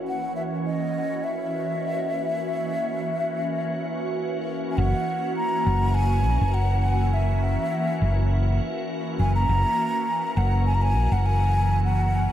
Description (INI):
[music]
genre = ambient dub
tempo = 102 BPM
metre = 4/4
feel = swing 53% on 16ths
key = F# mixolydian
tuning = A4 = 440 Hz
[part]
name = soft additive organ-like pad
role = sustained chords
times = 0.0-12.3 s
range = E3 to F#4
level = -28 LUFS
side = right 1 dB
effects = ensemble chorus, built-in reverb, phaser
[part]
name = hollow-body short-scale fingered electric bass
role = bass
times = 0.0-12.3 s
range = F#1 to A#1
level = -21 LUFS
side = equal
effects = none
[part]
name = mellow hollow concert flute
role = melody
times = 0.1-12.3 s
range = D#5 to A#5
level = -27 LUFS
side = left 1 dB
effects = dub echo
[sound]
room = moderate lush hall reverb, RT60 1.7 s, small room ambience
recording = none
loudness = -22 LUFS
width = side -11 dB against mid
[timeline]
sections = 0.0-4.8 A section; 4.8-12.3 B section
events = filter sweep on ambient pad 0.0-4.8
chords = 0.0 F#7